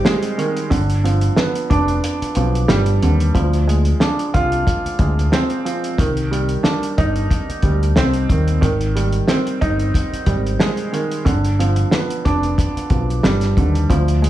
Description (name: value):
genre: hip hop, boom-bap hip-hop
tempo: 91 BPM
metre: 4/4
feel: swing 55% on 16ths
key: unclear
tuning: A4 = 440 Hz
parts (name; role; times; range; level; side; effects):
- dark upright piano; accompaniment; 0.0-14.3 s; D3 to F4; -20 LUFS; right 2 dB; high-pass filter, low-pass filter
- cloth-damped thuddy drum kit; drums; 0.0-14.3 s; hi-hat, kick drum, snare drum; -19 LUFS; equal; none
- deep dub fingered electric bass; bass; 0.7-14.3 s; F1 to Eb2; -18 LUFS; equal; none
room: light reverb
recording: studio reverb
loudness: -15 LUFS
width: side -13 dB against mid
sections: 0.0-3.3 A section; 3.3-14.3 B section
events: kick muted 2.0-3.3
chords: 0.0 Abmaj7; 0.7 G7; 3.3 Dm7b5; 6.0 Cmadd9; 8.6 Abmaj7; 11.3 G7